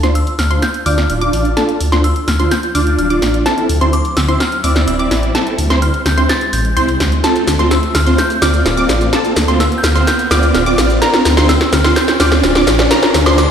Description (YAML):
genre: EDM, festival progressive house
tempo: 127 BPM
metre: 4/4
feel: straight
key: D minor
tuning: A4 = 440 Hz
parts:
  - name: wide unison pluck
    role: arpeggios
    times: 0.0-13.4 s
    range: A5 to D6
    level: -21 LUFS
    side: equal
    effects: ping-pong delay
  - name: supersaw chords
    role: riff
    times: 0.0-13.4 s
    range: C4 to D5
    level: -17 LUFS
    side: right 1 dB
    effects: phaser, low-pass filter, ping-pong delay
  - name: wide detuned saw bass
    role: bass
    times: 0.0-13.5 s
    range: D1 to D2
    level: -16 LUFS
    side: equal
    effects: chorus
  - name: big-room dance drum kit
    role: drums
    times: 0.0-13.5 s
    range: hi-hat, shaker, snare drum, woodblock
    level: -18 LUFS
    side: equal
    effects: none
  - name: riser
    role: sound effects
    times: 0.8-13.5 s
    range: none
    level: -22 LUFS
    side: right 1 dB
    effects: none
  - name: glassy synth bell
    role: melody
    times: 0.2-13.5 s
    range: D6 to A6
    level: -21 LUFS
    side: equal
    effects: chorus, ping-pong delay
room: wet lush hall reverb, RT60 1.8 s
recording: played on a big sound system in a bare room, stone room reverb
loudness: -11 LUFS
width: side -8 dB against mid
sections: 0.0-13.5 A section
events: build-up 0.0-13.5; drum fill 0.0-13.5; filter sweep on supersaw synth 0.0-13.5; riser 0.8-13.5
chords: 0.0 Dm; 3.5 Am/D; 7.2 F/D; 11.0 Bb/D